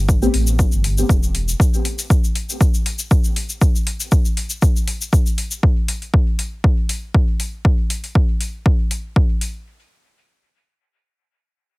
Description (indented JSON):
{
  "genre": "dub techno",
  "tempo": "119 BPM",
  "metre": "4/4",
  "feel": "swing 54% on 16ths",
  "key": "A minor",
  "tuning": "A4 = 442 Hz",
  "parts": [
    { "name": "warm sub bass", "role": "bass", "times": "0.0-1.5 s", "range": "E1 to A1", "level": "-19 LUFS", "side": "equal", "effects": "tube saturation, sidechain pumping" },
    { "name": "electronic kick drum", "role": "drums", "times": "0.1-9.3 s", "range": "none", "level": "-16 LUFS", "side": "equal", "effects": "overdrive" },
    { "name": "tube shaker", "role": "percussion", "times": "0.1-5.6 s", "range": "none", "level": "-27 LUFS", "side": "left 3 dB", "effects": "none" },
    { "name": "electronic hi-hat", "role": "drums", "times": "0.3-9.5 s", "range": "none", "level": "-26 LUFS", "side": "left 2 dB", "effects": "overdrive" }
  ],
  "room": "digital ambience",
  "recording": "heavily compressed radio sound, multiband compression",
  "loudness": "-16 LUFS",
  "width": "side -22 dB against mid",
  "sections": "0.0-9.7 A section",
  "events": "filter sweep on sub bass 0.0-1.6",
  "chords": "none"
}